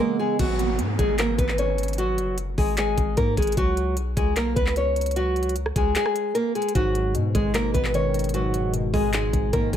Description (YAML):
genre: hip hop, trap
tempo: 151 BPM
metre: 4/4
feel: half-time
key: G# minor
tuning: A4 = 440 Hz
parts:
  - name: nylon-string guitar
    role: melody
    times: 0.0-9.8 s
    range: F#3 to C#5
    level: -24 LUFS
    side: equal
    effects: digital delay
  - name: glassy digital keys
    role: accompaniment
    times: 0.0-0.4, 6.7-9.8 s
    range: G#2 to B3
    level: -26 LUFS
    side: right 1 dB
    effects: chorus
  - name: long sustained 808-style bass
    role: bass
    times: 0.4-9.8 s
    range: F#1 to G#2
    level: -27 LUFS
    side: left 1 dB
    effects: none
  - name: trap drum kit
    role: drums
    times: 0.4-9.8 s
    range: crash cymbal, handclaps, hi-hat, kick drum, rim click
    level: -26 LUFS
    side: equal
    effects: none
  - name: downlifter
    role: sound effects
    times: 0.4-3.6 s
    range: none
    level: -32 LUFS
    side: right 3 dB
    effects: none
room: light reverb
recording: none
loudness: -21 LUFS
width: side -10 dB against mid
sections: 0.4-9.8 A section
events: break 0.0-0.4; kick muted 6.0-6.8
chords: 0.4 G#sus2; 3.6 C#5; 6.8 G#madd9